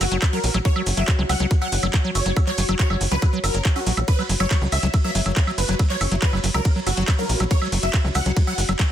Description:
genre	psychedelic trance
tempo	140 BPM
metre	4/4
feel	straight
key	F# major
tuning	A4 = 440 Hz
part	supersaw stab	melody	0.0-8.6 s	F#4 to F#5	-28 LUFS	equal	phaser, sidechain pumping, dub echo
part	liquid acid bass	riff	0.0-8.8 s	F#3 to C#4	-27 LUFS	equal	chorus, auto-pan, vintage 12-bit sampler grit, sidechain pumping, tape echo
part	tight sequencer bass	bass	0.0-8.8 s	F#1 to C#2	-23 LUFS	equal	none
part	drum and bass drum kit	drums	0.0-8.9 s	handclaps, hi-hat, ride cymbal, woodblock	-27 LUFS	right 1 dB	none
part	maracas	percussion	0.0-8.9 s	none	-35 LUFS	right 4 dB	none
part	granular cloud pad	texture	0.0-8.9 s	F#4 to B5	-32 LUFS	left 1 dB	built-in reverb, sidechain pumping
part	electronic kick drum	drums	0.2-8.9 s	none	-19 LUFS	equal	overdrive
part	formant-sweep wobble bass	second line	0.3-0.7, 5.0-6.3 s	F#3 to E4	-41 LUFS	left 2 dB	none
part	zap	sound effects	7.2-7.3 s	none	-39 LUFS	equal	none
room	little or no reverb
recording	dense, heavily limited modern master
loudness	-18 LUFS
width	side -10 dB against mid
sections	0.0-8.9 A section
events	none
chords	0.0 F#5

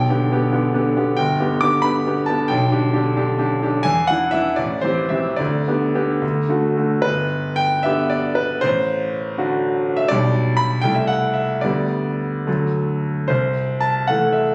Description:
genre	classical, romantic character piece for solo piano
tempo	69-95 BPM (dotted quarters)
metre	6/8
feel	rubato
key	G major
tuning	A4 = 438 Hz
part	bright concert grand piano	solo	0.0-14.5 s	G1 to D6	-20 LUFS	equal	none
room	moderate recital hall reverb, RT60 1.8 s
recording	recorded on a phone in the room, studio reverb, compression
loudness	-20 LUFS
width	mono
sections	0.0-7.0 A section; 7.0-14.5 B section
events	none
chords	0.0 G/B; 1.2 G; 2.5 G/B; 3.8 E9; 4.6 Am7; 5.4 G/D; 6.2 D; 7.0 G; 8.6 D7/A; 10.1 G/B; 10.8 Am7/C; 11.6 G/D; 12.5 D; 13.3 Am/C

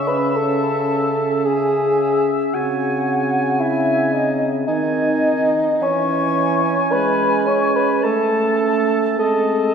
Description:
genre	classical, slow romantic movement for wind quintet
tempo	50-56 BPM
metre	3/4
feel	rubato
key	C# minor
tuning	A4 = 441 Hz
part	mellow hollow silver concert flute	melody	0.0-9.7 s	D#5 to C#6	-24 LUFS	left 5 dB	none
part	clear oboe	second line	0.0-9.7 s	D#5 to A5	-26 LUFS	left 1 dB	none
part	warm French horn	accompaniment	0.0-9.7 s	C#3 to A3	-23 LUFS	right 1 dB	none
part	warm clarinet	accompaniment	0.0-9.7 s	B#3 to C#4	-25 LUFS	right 4 dB	none
part	mellow bassoon	bass	0.0-9.7 s	C#4 to B4	-19 LUFS	right 1 dB	none
room	wet church reverb, RT60 2.9 s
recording	recorded in a church or concert hall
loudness	-16 LUFS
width	side -7 dB against mid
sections	0.0-9.7 A section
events	none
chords	0.0 C#m; 2.5 G#7/C#; 5.8 C#m/E; 8.0 A; 9.2 G#

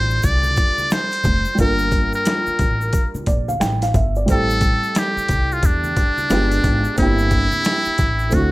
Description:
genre	hip hop, jazz-hop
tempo	89 BPM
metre	4/4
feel	swing 63% on 16ths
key	G dorian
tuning	A4 = 440 Hz
part	trumpet with metal mute	melody	0.0-8.5 s	D4 to D5	-20 LUFS	equal	none
part	dark upright piano	accompaniment	0.0-8.5 s	G3 to G5	-24 LUFS	right 1 dB	none
part	upright bass	bass	0.0-8.5 s	F1 to E2	-21 LUFS	equal	none
part	egg shaker and congas	percussion	0.1-8.5 s	none	-31 LUFS	equal	none
part	boom bap sampler-style drum kit	drums	0.2-8.5 s	hi-hat, kick drum, snare drum	-20 LUFS	equal	overdrive
room	small room ambience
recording	none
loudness	-16 LUFS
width	side -19 dB against mid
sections	0.0-8.5 A section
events	none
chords	0.0 F69; 1.6 Gm9; 4.3 Am7; 6.3 G7b9; 7.0 C7/G

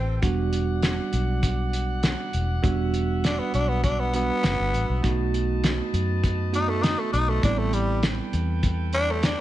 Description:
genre	straight-eighth soul blues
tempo	100 BPM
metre	4/4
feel	straight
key	E minor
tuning	A4 = 440 Hz
part	growling tenor saxophone	melody	0.0-9.4 s	G3 to D#4	-26 LUFS	left 1 dB	none
part	bell-like tine electric piano	accompaniment	0.0-9.4 s	G3 to B4	-29 LUFS	right 7 dB	none
part	warm horn section	sustained chords	0.0-9.4 s	A4 to A5	-36 LUFS	left 1 dB	none
part	vintage muted fingered electric bass	bass	0.0-9.3 s	E1 to F#2	-26 LUFS	left 1 dB	none
part	cloth-damped thuddy drum kit	drums	0.2-9.4 s	hi-hat, kick drum, snare drum	-26 LUFS	equal	none
room	light reverb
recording	nothing above 10.3 kHz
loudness	-22 LUFS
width	side -14 dB against mid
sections	0.0-9.4 A section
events	tenor saxophone solo 0.0-9.4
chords	0.2 Em9; 5.0 B7; 7.4 Am9

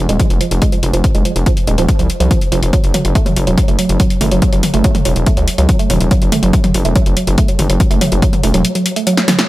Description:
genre	driving peak-time techno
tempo	142 BPM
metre	4/4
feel	straight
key	unclear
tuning	A4 = 439 Hz
part	gritty driven synth bass	bass	0.0-8.6 s	Eb1 to Db2	-15 LUFS	equal	sidechain pumping
part	woody wave-folded pluck	riff	0.1-9.3 s	F3 to A3	-17 LUFS	right 2 dB	chorus, sidechain pumping, tape echo
part	punchy analog drum machine	drums	0.1-9.5 s	hi-hat, snare drum, toms	-19 LUFS	left 1 dB	none
part	electronic kick drum	drums	0.2-8.3 s	none	-14 LUFS	equal	none
room	light reverb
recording	none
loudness	-11 LUFS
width	side -17 dB against mid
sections	0.0-9.5 A section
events	drum fill 9.2-9.5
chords	0.0 F5; 2.7 N.C.

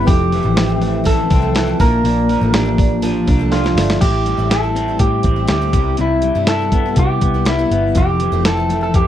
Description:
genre	jangly indie pop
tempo	122 BPM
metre	4/4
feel	straight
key	unclear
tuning	A4 = 440 Hz
part	electric guitar through a small old amp	melody	0.0-9.1 s	E4 to Bb4	-19 LUFS	equal	slapback echo
part	picked twelve-string acoustic guitar	accompaniment	0.0-9.1 s	F2 to E4	-26 LUFS	right 6 dB	none
part	reed electric piano	accompaniment	0.0-4.0 s	F3 to Bb5	-24 LUFS	right 10 dB	none
part	electric guitar through a small old amp	arpeggios	0.0-9.1 s	F2 to E4	-20 LUFS	left 4 dB	harmonic tremolo, slapback echo
part	vintage muted picked electric bass	bass	0.0-9.1 s	F1 to C3	-19 LUFS	equal	none
part	dusty soul sampler-style drum kit	drums	0.1-9.1 s	crash cymbal, hi-hat, kick drum, snare drum	-17 LUFS	equal	none
room	light reverb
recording	dry, close 1970s-style studio recording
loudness	-13 LUFS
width	side -11 dB against mid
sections	0.0-4.0 A section; 4.0-9.1 B section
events	reed electric piano fill 3.0-4.0; drum fill 3.5-4.0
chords	0.1 Fmaj7; 1.8 Bbmaj7; 4.0 Am7; 5.7 Cmaj7; 8.0 Fmaj7

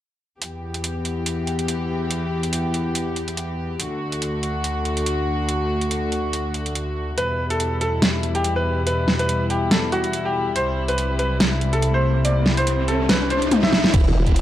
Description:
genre	heavy wobble dubstep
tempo	142 BPM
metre	4/4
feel	swing 55% on 16ths, half-time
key	E minor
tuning	A4 = 443 Hz
part	warm studio string section	sustained chords	0.4-14.4 s	C2 to G4	-23 LUFS	equal	sidechain pumping, low-pass filter
part	dubstep drum kit	drums	0.4-14.4 s	crash cymbal, hi-hat, snare drum, toms	-22 LUFS	equal	none
part	bright concert grand piano	melody	7.2-13.9 s	F#4 to E5	-24 LUFS	equal	tape echo
part	riser	sound effects	11.1-13.9 s	none	-26 LUFS	left 1 dB	none
part	fuzz guitar	stabs	13.9-14.3 s	B3 to E5	-31 LUFS	right 2 dB	distortion, tape echo
part	formant-sweep wobble bass	bass	13.9-14.4 s	E1	-19 LUFS	equal	chorus, overdrive
part	electronic kick drum	drums	13.9-14.3 s	none	-17 LUFS	equal	none
room	moderate plate reverb, RT60 2.0 s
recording	dark, warm production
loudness	-19 LUFS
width	side -12 dB against mid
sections	0.4-13.9 A section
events	riser 11.1-13.9; drum fill 13.5-13.9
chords	0.4 Em; 3.8 D; 7.2 Em; 10.6 C

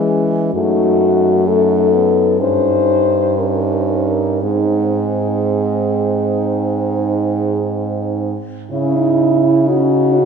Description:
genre	classical, lyrical piece for horn quartet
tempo	54-66 BPM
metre	4/4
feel	rubato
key	C# minor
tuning	A4 = 440 Hz
part	mellow French horn	melody	0.0-10.3 s	C#4 to B#4	-17 LUFS	left 5 dB	none
part	mellow French horn	second line	0.0-10.3 s	C#4 to F#4	-21 LUFS	right 9 dB	none
part	mellow French horn	accompaniment	0.0-10.3 s	G#3 to E4	-21 LUFS	left 1 dB	none
part	clear French horn	bass	0.0-10.3 s	F#2 to E3	-19 LUFS	right 3 dB	none
room	wet church reverb, RT60 2.5 s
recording	minimal, uncompressed stereo recording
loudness	-13 LUFS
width	side -6 dB against mid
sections	0.0-8.7 A section; 8.7-10.3 B section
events	none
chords	0.0 C#m/E; 0.5 D#dim/F#; 2.4 D#7/G; 4.4 G#; 8.7 C#m

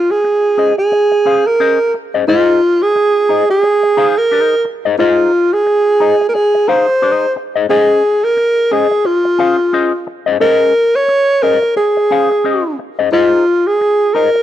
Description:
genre	funk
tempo	88 BPM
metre	4/4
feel	swing 60% on 16ths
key	unclear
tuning	A4 = 440 Hz
part	breathy alto saxophone	melody	0.0-14.4 s	F4 to Db5	-11 LUFS	right 1 dB	slapback echo
part	mellow electric guitar	accompaniment	0.1-14.4 s	Db4 to F5	-18 LUFS	left 7 dB	wah, warbly pitch drift
room	light reverb, small room ambience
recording	dry, close 1970s-style studio recording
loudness	-10 LUFS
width	side -11 dB against mid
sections	0.0-14.4 A section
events	none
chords	0.0 Dbmaj7sus2; 2.3 Fm7; 7.7 Dbmaj7sus2; 13.1 Fm7

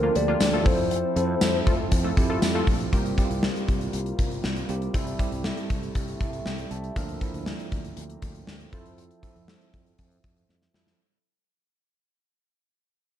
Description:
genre	1980s-style pop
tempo	119 BPM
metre	4/4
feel	straight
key	unclear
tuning	A4 = 440 Hz
part	hollow clarinet-like synth lead	melody	0.0-2.4 s	Bb4 to D5	-26 LUFS	left 3 dB	chorus, tape echo
part	bell-like tine electric piano	accompaniment	0.0-11.0 s	F3 to A5	-31 LUFS	right 5 dB	medium stereo tremolo
part	warm French horn section	sustained chords	0.0-11.0 s	C3 to E5	-38 LUFS	left 2 dB	none
part	funky polysynth comp	stabs	0.0-11.0 s	A3 to C5	-34 LUFS	left 3 dB	chorus
part	sustaining fretless electric bass	bass	0.0-10.9 s	Bb1 to F2	-31 LUFS	equal	none
part	gated 80s drum kit	drums	0.2-11.0 s	hi-hat, kick drum, snare drum, tambourine	-26 LUFS	equal	none
room	light reverb, small room reverb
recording	dark, warm production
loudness	-23 LUFS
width	side -10 dB against mid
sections	0.0-2.9 A section; 2.9-11.0 B section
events	fade-out 2.9-11.0; drum fill 10.5-11.0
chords	0.0 Bbmaj7/D; 0.7 Fmaj7; 2.9 C7sus4; 4.9 Am7/C; 7.0 Bbmaj7/D; 8.7 Fmaj7

